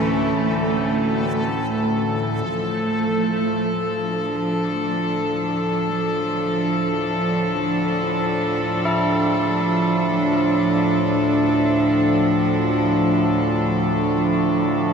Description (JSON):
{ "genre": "dark ambient drone", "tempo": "free time", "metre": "none", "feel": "none", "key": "D harmonic minor", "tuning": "A4 = 440 Hz", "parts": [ { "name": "rich studio cello section", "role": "sustained chords", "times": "0.0-14.9 s", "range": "D2 to A4", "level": "-20 LUFS", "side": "right 1 dB", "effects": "none" }, { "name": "tubular bells", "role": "arpeggios", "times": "0.0-2.5, 8.9-14.9 s", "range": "E4", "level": "-30 LUFS", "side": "equal", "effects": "ping-pong delay" }, { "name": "overtone-sweeping drone", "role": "drone", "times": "0.0-14.9 s", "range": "D2 to A2", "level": "-26 LUFS", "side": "left 2 dB", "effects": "chorus, built-in reverb" }, { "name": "backwards swelling texture", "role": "texture", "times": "0.0-2.5 s", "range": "A3 to A4", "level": "-25 LUFS", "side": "right 2 dB", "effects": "built-in reverb" } ], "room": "wet cathedral reverb, RT60 5.0 s", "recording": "none", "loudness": "-18 LUFS", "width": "side -6 dB against mid", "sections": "0.0-2.5 A section; 2.5-14.9 B section", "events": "fade-in on synth drone 2.5-14.9; fade-out on tubular bells 2.5-14.9", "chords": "0.0 A/D; 2.5 Dm", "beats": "free time" }